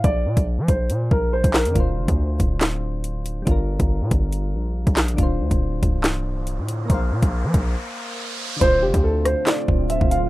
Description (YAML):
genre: hip hop, drill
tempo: 140 BPM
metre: 4/4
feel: half-time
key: D minor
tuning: A4 = 440 Hz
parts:
  - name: dark concert grand piano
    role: melody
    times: 0.0-1.7, 8.6-10.3 s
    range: G4 to F5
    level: -22 LUFS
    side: right 1 dB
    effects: tape echo
  - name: distorted 808-style bass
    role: bass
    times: 0.0-10.3 s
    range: C1 to F3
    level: -22 LUFS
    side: equal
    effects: distortion
  - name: drill drum kit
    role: drums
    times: 0.0-10.2 s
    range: handclaps, hi-hat, kick drum, rim click, snare drum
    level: -21 LUFS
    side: equal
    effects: none
  - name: soft electric-piano-like synth keys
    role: accompaniment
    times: 1.7-10.3 s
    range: D3 to F5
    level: -30 LUFS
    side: left 2 dB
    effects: chorus
  - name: riser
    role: sound effects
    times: 6.2-8.6 s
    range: none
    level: -32 LUFS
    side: right 1 dB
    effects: none
  - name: deep dark ambient pad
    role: sustained chords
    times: 9.2-10.3 s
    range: D3 to F4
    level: -28 LUFS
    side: right 3 dB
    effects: chorus, built-in reverb
room: little or no reverb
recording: rough home demo mix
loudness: -18 LUFS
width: side -18 dB against mid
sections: 0.0-8.6 A section; 8.6-10.3 B section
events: break 0.0-1.8, 1.8-8.6; riser 6.2-8.6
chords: 0.0 Bbsus2; 1.8 Dm7; 3.5 Gm7; 5.2 Dm7; 6.9 Bbsus2; 8.6 Dm7